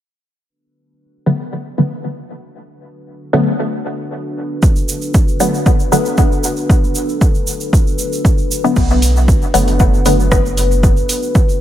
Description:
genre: dub techno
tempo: 116 BPM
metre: 4/4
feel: swing 53% on 16ths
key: B minor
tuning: A4 = 440 Hz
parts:
  - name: dark analog pad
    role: sustained chords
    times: 0.5-11.6 s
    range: D4 to B4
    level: -23 LUFS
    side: left 2 dB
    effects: lush chorus, sidechain pumping
  - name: filtered dub chord stab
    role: stabs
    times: 1.3-10.4 s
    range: D3 to B3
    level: -17 LUFS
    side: left 1 dB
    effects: chorus, phaser, sidechain pumping, dub echo
  - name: electronic kick drum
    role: drums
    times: 4.6-11.5 s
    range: none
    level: -13 LUFS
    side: equal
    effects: overdrive, small room ambience
  - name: egg shaker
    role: percussion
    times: 4.6-11.6 s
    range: none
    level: -24 LUFS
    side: right 4 dB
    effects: none
  - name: soft dub sub bass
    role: bass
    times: 8.8-11.0 s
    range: F#1 to B1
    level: -15 LUFS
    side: equal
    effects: sidechain pumping
  - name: deep house drum kit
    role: drums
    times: 8.8-11.2 s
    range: crash cymbal, hi-hat, rim click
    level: -24 LUFS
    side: right 1 dB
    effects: overdrive, small room ambience
room: light reverb, digital ambience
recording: none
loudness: -12 LUFS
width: side -12 dB against mid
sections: 0.5-8.8 A section; 8.8-11.6 B section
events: filter sweep on analog synth pad 0.5-8.8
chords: 0.5 Bm7

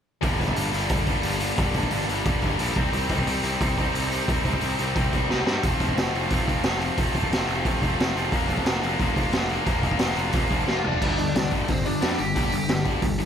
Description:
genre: punk rock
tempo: 178 BPM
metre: 4/4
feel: straight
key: G minor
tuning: A4 = 440 Hz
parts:
  - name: tight distorted guitar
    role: riff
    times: 0.2-13.3 s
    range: F2 to C4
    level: -28 LUFS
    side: left 15 dB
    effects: distortion
  - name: tight distorted guitar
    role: riff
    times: 0.2-13.3 s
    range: G2 to F4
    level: -29 LUFS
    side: right 13 dB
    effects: distortion
  - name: fuzz picked electric bass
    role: bass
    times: 0.2-13.3 s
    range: F1 to G2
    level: -29 LUFS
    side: equal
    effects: overdrive
  - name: raw garage drum kit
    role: drums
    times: 0.2-13.3 s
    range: crash cymbal, hi-hat, kick drum, snare drum, toms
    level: -25 LUFS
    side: equal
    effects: none
  - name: bluesy overdriven lead guitar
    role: melody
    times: 10.7-12.8 s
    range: C4 to G5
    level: -29 LUFS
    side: equal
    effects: distortion, tape echo
room: light reverb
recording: none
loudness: -21 LUFS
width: side -8 dB against mid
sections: 0.2-11.0 A section; 11.0-13.3 B section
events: drum fill 5.3-5.6, 10.7-11.0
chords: 0.2 Gm; 2.8 Cm; 5.6 F; 8.3 Bb/F; 11.0 G5

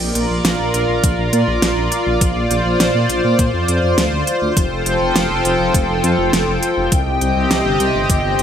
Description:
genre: synthwave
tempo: 102 BPM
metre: 4/4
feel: straight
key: Bb major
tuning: A4 = 440 Hz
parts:
  - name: chorused pulse-width pad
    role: sustained chords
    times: 0.0-8.4 s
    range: C3 to G5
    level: -17 LUFS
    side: equal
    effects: sidechain pumping
  - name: dark detuned saw bass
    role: bass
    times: 0.0-8.4 s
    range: F1 to Bb2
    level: -20 LUFS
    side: equal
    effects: none
  - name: pop drum kit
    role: drums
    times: 0.2-8.4 s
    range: hi-hat, snare drum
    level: -20 LUFS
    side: right 1 dB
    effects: small room ambience
  - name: electronic kick drum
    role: drums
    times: 1.0-8.2 s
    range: none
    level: -17 LUFS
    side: equal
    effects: overdrive, small room ambience
room: light reverb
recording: none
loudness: -14 LUFS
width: side -8 dB against mid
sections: 0.0-8.4 A section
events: none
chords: 0.0 Bb; 4.6 Fadd9; 6.9 Cm

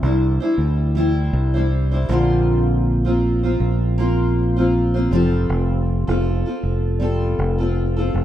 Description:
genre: acoustic pop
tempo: 79 BPM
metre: 4/4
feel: swing 55% on 16ths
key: unclear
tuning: A4 = 440 Hz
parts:
  - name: picked steel-string acoustic guitar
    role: accompaniment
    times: 0.0-8.2 s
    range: Bb2 to C5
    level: -20 LUFS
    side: equal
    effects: double-tracked left and right
  - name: fingered electric bass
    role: bass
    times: 0.0-8.2 s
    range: F1 to D2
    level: -19 LUFS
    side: equal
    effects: none
room: light reverb, small room reverb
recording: rough home demo mix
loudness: -17 LUFS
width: side -12 dB against mid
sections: 0.0-8.2 A section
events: none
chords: 0.0 Cadd9; 2.1 Bbadd9; 5.1 Fadd9

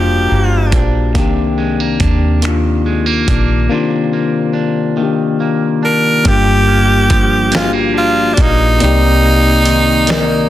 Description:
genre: slow six-eight R&B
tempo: 47 BPM (dotted quarters)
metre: 6/8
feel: straight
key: C minor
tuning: A4 = 440 Hz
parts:
  - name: raspy tenor saxophone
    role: melody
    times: 0.0-0.8, 5.8-10.5 s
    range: D4 to Bb4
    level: -14 LUFS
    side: right 1 dB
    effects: slapback echo
  - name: electric guitar at the edge of break-up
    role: second line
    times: 0.0-10.5 s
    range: G2 to D4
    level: -19 LUFS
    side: right 6 dB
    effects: phaser
  - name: mellow tine electric piano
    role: accompaniment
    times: 0.0-10.5 s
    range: Eb3 to D5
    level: -16 LUFS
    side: left 5 dB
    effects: none
  - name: vintage muted fingered electric bass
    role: bass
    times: 0.0-10.5 s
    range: F1 to Eb2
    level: -15 LUFS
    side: equal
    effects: none
  - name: dusty soul sampler-style drum kit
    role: drums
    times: 0.7-10.3 s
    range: finger snaps, hi-hat, kick drum, snare drum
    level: -16 LUFS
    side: equal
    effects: soft clipping on snare
room: light reverb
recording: dense, heavily limited modern master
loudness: -10 LUFS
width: side -13 dB against mid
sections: 0.0-6.3 A section; 6.3-10.5 B section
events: none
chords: 0.0 Gm7; 1.1 Cm9; 6.3 Gm7; 8.8 Cm9

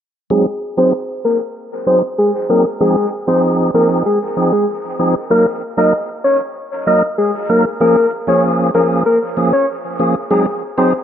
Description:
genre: dancehall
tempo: 96 BPM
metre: 4/4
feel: straight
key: unclear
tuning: A4 = 436 Hz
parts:
  - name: soft octave-layered synth lead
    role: melody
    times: 0.3-10.9 s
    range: Ab4 to Eb5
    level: -15 LUFS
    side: left 1 dB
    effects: chorus, low-pass filter, dub echo
  - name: tonewheel organ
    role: accompaniment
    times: 0.3-10.9 s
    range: F3 to Bb4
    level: -16 LUFS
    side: right 1 dB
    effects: overdrive, fast rotary speaker, low-pass filter, dub echo
room: moderate spring reverb, RT60 2.7 s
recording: echo-heavy mix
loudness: -13 LUFS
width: side -9 dB against mid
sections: 0.3-11.0 A section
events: filter sweep 0.3-11.0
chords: 0.3 Ab7; 2.8 Fm7; 5.3 Ebm; 7.8 Bbm7; 10.3 Ab7

